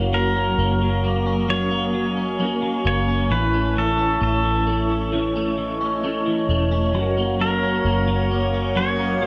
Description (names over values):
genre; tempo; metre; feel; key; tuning
dream pop; 66 BPM; 4/4; straight; F# major; A4 = 444 Hz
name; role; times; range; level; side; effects
clean electric guitar; accompaniment; 0.0-9.3 s; F#3 to A#4; -29 LUFS; equal; tremolo, ensemble chorus
warbly tape-like pad; sustained chords; 0.0-9.3 s; A4 to D#6; -31 LUFS; equal; chorus, built-in reverb
clean electric guitar; arpeggios; 0.0-9.3 s; E3 to C#4; -27 LUFS; equal; ensemble chorus, digital delay
vintage muted fingered electric bass; bass; 0.0-9.3 s; E1 to A1; -27 LUFS; equal; none
pedal steel guitar; melody; 0.1-9.3 s; A4 to C#5; -27 LUFS; equal; digital delay
drifting glass-harmonics texture; texture; 1.0-9.3 s; C#5 to G#5; -39 LUFS; equal; chorus, built-in reverb, digital delay
room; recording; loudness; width
moderate lush hall reverb, RT60 2.4 s; none; -21 LUFS; mono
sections
0.0-9.3 A section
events
none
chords
0.0 F#; 3.3 A; 6.9 F#